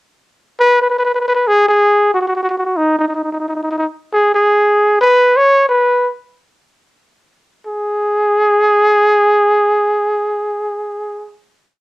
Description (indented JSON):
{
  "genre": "calypso",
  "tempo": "136 BPM",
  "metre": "4/4",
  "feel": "straight",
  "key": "unclear",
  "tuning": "A4 = 440 Hz",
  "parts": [
    { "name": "breathy trumpet", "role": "solo", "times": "0.6-11.3 s", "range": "D#4 to C#5", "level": "-11 LUFS", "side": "equal", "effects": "cassette tape" }
  ],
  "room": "light reverb",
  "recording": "home recording on cassette",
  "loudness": "-11 LUFS",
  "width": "side -20 dB against mid",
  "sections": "0.6-7.7 verse; 7.7-11.2 final note",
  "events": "none",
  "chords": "none"
}